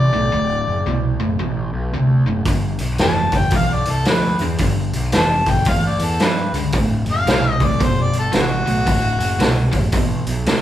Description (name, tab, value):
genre	blues rock power trio and southern rock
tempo	112 BPM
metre	4/4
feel	swing 63% on 8ths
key	D mixolydian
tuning	A4 = 439 Hz
part	mellow harmonica	melody	0.0-9.9 s	F#4 to A5	-21 LUFS	left 1 dB	overdrive
part	distorted electric guitar	riff	0.0-10.6 s	D2 to F3	-20 LUFS	right 1 dB	overdrive
part	fuzz picked electric bass	bass	0.0-10.6 s	D1 to G2	-22 LUFS	equal	overdrive
part	raw garage drum kit	drums	2.5-10.6 s	hi-hat, kick drum, snare drum	-20 LUFS	equal	none
room	moderate large studio reverb, RT60 1.1 s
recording	band playing live in one room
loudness	-16 LUFS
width	side -12 dB against mid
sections	0.0-10.6 A section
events	none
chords	0.0 D7; 2.5 G7; 6.7 D7